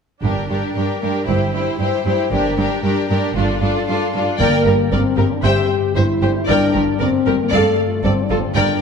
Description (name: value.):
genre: cinematic.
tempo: 115 BPM.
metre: 4/4.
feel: straight.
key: G dorian.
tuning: A4 = 440 Hz.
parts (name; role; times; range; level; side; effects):
rich symphonic violin section; melody; 0.2-8.8 s; A4 to G5; -25 LUFS; left 5 dB; none.
rich symphonic violin section; second line; 0.2-8.8 s; F4 to E5; -24 LUFS; left 3 dB; none.
rich symphonic viola section; accompaniment; 0.2-8.8 s; D4 to C5; -22 LUFS; right 2 dB; none.
clear symphonic cello section; bass; 0.2-8.6 s; G2; -22 LUFS; right 3 dB; none.
rich symphonic double bass section; bass; 0.2-8.6 s; G1; -23 LUFS; right 4 dB; none.
mellow French horn section; sustained chords; 4.4-8.8 s; A3 to G4; -19 LUFS; left 4 dB; none.
concert harp; arpeggios; 4.4-8.8 s; G2 to C5; -24 LUFS; left 6 dB; none.
timpani; percussion; 4.4-5.1 s; G2; -27 LUFS; equal; none.
room: wet scoring stage reverb, RT60 1.7 s.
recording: dark, warm production.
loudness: -15 LUFS.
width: side -6 dB against mid.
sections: 0.2-4.4 A section; 4.4-8.8 B section.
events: none.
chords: 0.2 Gm; 1.3 C/G; 2.3 Gm; 5.4 C/G; 6.5 Gm; 7.5 Dm/G.